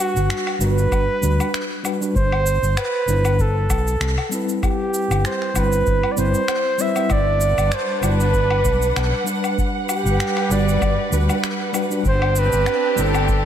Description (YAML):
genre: sunset chillout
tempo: 97 BPM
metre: 4/4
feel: swing 55% on 16ths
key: G major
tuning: A4 = 440 Hz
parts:
  - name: mellow flugelhorn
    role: melody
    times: 0.0-13.5 s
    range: F#4 to E5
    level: -22 LUFS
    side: right 2 dB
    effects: ping-pong delay
  - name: mellow tine electric piano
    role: accompaniment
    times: 0.0-13.1 s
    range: G3 to F#5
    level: -26 LUFS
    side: moving between left 4 dB and right 4 dB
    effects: medium stereo tremolo, auto-pan, ping-pong delay
  - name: overdriven fingered electric bass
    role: bass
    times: 0.2-13.5 s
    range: G1 to D2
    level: -20 LUFS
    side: equal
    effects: tube saturation
  - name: electronic cabasa, finger snaps and woodblock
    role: drums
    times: 0.2-13.4 s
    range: none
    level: -28 LUFS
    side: left 2 dB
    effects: none
  - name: electronic kick drum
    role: drums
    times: 0.9-13.4 s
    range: none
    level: -22 LUFS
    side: equal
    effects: none
  - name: warm studio string section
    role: sustained chords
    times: 7.1-13.5 s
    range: G3 to F#5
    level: -24 LUFS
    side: right 1 dB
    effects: none
room: moderate lush hall reverb, RT60 1.6 s, digital ambience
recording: dreamy mix soaked in reverb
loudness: -17 LUFS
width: side -10 dB against mid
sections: 0.0-13.5 A section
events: none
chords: 0.0 Gmaj7; 2.2 D9sus4/G (rootless); 4.6 Cmaj7/G; 7.1 Em9/G (rootless); 9.6 Gmaj7; 12.1 Cmaj7(no3)/G